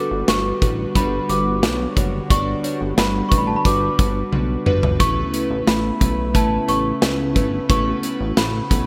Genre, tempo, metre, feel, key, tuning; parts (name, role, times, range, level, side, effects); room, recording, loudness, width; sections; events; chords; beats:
1980s-style pop; 89 BPM; 4/4; straight; A4 = 440 Hz
worn celesta; melody; 0.0-8.9 s; A5 to D6; -27 LUFS; equal
glassy digital keys; accompaniment; 0.0-8.9 s; G3 to D5; -26 LUFS; equal; chorus
brassy analog pad; sustained chords; 0.0-8.9 s; C#3 to F#4; -30 LUFS; equal; chorus
chorused synth bass; bass; 0.1-8.9 s; F#1 to C#2; -27 LUFS; equal
big rock drum kit; drums; 0.3-8.9 s; hi-hat, kick drum, snare drum, toms; -22 LUFS; equal
moderate plate reverb, RT60 3.1 s; bright 1980s-style digital production; -19 LUFS; mono
0.0-8.9 A section
drum fill 4.3-5.0
0.0 Gmaj7; 5.0 Aadd9
0.28 0.95 1.63 | 2.30 2.98 3.65 4.33 | 5.00 5.67 6.35 7.02 | 7.70 8.37